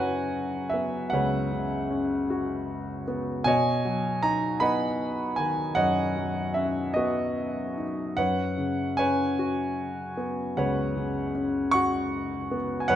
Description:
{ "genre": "classical, lyrical solo piano", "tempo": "51 BPM (dotted quarters)", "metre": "6/8", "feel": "rubato", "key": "unclear", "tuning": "A4 = 438 Hz", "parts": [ { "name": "clear grand piano", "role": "solo", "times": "0.0-13.0 s", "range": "C#2 to C#6", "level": "-25 LUFS", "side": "equal", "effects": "none" } ], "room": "moderate recital hall reverb, RT60 1.6 s", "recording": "none", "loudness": "-25 LUFS", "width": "side -11 dB against mid", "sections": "0.0-13.0 A section", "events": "none", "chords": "0.0 F#sus4; 3.5 Badd9; 8.2 F#sus4" }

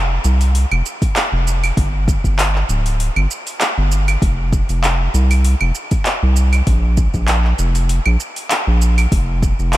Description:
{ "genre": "organic downtempo", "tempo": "98 BPM", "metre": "4/4", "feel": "swing 54% on 16ths", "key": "unclear", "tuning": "A4 = 440 Hz", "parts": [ { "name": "round analog bass", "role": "bass", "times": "0.0-9.8 s", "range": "D1 to C2", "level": "-15 LUFS", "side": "equal", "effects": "sidechain pumping" }, { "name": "deep house drum kit", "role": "drums", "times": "0.2-9.8 s", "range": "claves, handclaps, hi-hat, shaker", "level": "-20 LUFS", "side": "right 1 dB", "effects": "overdrive, small room reverb" }, { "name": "electronic kick drum", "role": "drums", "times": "1.0-9.6 s", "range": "none", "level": "-17 LUFS", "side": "equal", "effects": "small room reverb" } ], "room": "light reverb", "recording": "none", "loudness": "-14 LUFS", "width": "side -16 dB against mid", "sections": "0.0-9.8 A section", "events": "none", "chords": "none" }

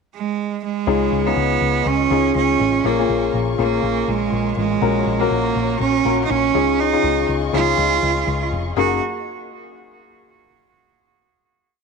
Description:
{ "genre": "piano-driven pop", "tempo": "122 BPM", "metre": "4/4", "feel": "swing 56% on 16ths", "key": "F# major", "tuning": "A4 = 436 Hz", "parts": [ { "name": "bright cello", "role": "melody", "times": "0.1-9.0 s", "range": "G#3 to F#4", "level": "-19 LUFS", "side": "right 10 dB", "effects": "none" }, { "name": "clear concert grand piano", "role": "accompaniment", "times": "0.9-9.0 s", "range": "F#2 to A#4", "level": "-21 LUFS", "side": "left 13 dB", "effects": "none" }, { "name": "dark studio string section", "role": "sustained chords", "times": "0.9-9.0 s", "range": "A#3 to C#6", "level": "-30 LUFS", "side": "left 4 dB", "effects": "none" }, { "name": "deep dub picked electric bass", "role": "bass", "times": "0.9-9.0 s", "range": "E#1 to C#2", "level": "-24 LUFS", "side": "left 2 dB", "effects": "none" } ], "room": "moderate plate reverb, RT60 2.4 s", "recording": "1960s-style stereo with parts hard left and right", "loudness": "-16 LUFS", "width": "side -5 dB against mid", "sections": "0.0-0.9 pickup bar; 0.9-8.8 pre-chorus; 8.8-10.7 final chord", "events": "none", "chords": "0.0 N.C.; 0.9 C#add9; 2.8 A#m7; 4.8 F#/A#; 6.5 C#add9; 8.8 F#69" }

